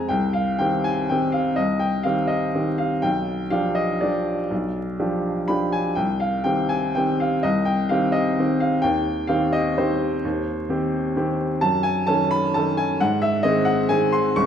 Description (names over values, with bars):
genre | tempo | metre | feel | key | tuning
classical, piano waltz | 117-138 BPM | 3/4 | rubato | C minor | A4 = 441 Hz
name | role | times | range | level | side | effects
clear upright piano | solo | 0.0-14.5 s | B1 to C#6 | -19 LUFS | equal | none
room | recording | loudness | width
moderate recital hall reverb, RT60 1.4 s | vinyl crackle | -20 LUFS | side -8 dB against mid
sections
0.1-14.5 A section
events
none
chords
0.1 Cm; 3.0 G7/B; 6.0 Cm; 8.8 Cm/Eb; 11.6 D#m7b5/F#; 13.0 G#